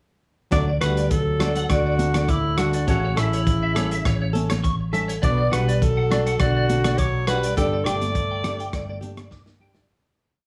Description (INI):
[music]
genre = highlife guitar band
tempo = 102 BPM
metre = 4/4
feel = straight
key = D major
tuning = A4 = 440 Hz
[part]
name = breathy alto saxophone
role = melody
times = 0.5-9.0 s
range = E4 to D5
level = -28 LUFS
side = equal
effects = none
[part]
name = breathy trombone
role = second line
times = 0.5-9.0 s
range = A2 to B3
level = -34 LUFS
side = equal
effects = tape echo
[part]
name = flamenco guitar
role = accompaniment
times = 0.5-9.8 s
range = F#3 to A4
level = -32 LUFS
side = equal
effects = none
[part]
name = clean electric guitar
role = arpeggios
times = 0.5-9.8 s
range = C#5 to D6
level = -32 LUFS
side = equal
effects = ensemble chorus
[part]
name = hollow-body short-scale fingered electric bass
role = bass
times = 0.5-9.9 s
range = G1 to D2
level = -26 LUFS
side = equal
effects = none
[part]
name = crunchy breakbeat drum kit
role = drums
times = 0.5-9.9 s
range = hi-hat, kick drum, rim click, snare drum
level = -29 LUFS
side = equal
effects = none
[part]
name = congas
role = percussion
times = 1.4-9.9 s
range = none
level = -31 LUFS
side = equal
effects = none
[sound]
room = light reverb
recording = studio reverb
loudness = -22 LUFS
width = mono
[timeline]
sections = 0.5-9.9 A section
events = fade-out 7.6-9.9; drum fill 9.3-9.9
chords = 0.5 D; 2.9 A; 5.2 Bm; 7.6 Gsus2